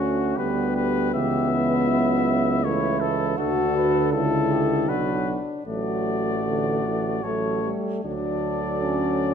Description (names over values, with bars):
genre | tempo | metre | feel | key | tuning
classical, brass quintet | 79 BPM | 3/4 | rubato | D major | A4 = 441 Hz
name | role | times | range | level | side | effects
clear trumpet | melody | 0.0-9.3 s | F#4 to E5 | -29 LUFS | left 8 dB | none
mellow flugelhorn | second line | 0.0-9.3 s | E4 to B4 | -30 LUFS | right 8 dB | none
bright trombone | accompaniment | 0.0-9.3 s | D3 to A3 | -30 LUFS | right 4 dB | none
mellow French horn | accompaniment | 0.0-9.3 s | A3 to F#4 | -25 LUFS | left 4 dB | none
clear tuba | bass | 0.0-9.3 s | A1 to D2 | -28 LUFS | right 5 dB | none
room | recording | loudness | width
wet recital hall reverb, RT60 1.7 s | none | -21 LUFS | side -7 dB against mid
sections
0.0-9.3 A section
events
none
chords
0.4 G/D; 1.1 A/C#; 3.4 D; 4.9 Bm; 5.7 D/A; 7.2 A; 8.0 D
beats
0.38 | 1.14 1.89 2.64 | 3.38 4.13 4.89 | 5.67 6.45 7.24 | 8.04 8.81